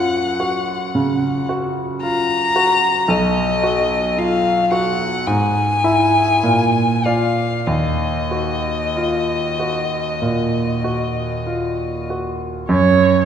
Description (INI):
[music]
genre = classical, slow romantic movement for piano quartet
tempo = 46-56 BPM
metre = 4/4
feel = rubato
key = Eb minor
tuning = A4 = 439 Hz
[part]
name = rich violin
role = melody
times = 0.0-12.1 s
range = D#5 to Bb5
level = -20 LUFS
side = left 3 dB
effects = none
[part]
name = bright concert grand piano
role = accompaniment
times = 0.0-13.3 s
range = B1 to E5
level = -18 LUFS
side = right 1 dB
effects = none
[part]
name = clear viola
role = accompaniment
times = 12.7-13.2 s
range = C#5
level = -14 LUFS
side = right 7 dB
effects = none
[sound]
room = wet concert hall reverb, RT60 2.1 s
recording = none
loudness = -16 LUFS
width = side -8 dB against mid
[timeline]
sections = 0.0-12.7 A section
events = none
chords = 0.0 Gb; 3.1 B; 5.3 E/G#; 6.4 Bb7; 7.7 Ebm; 12.7 F#5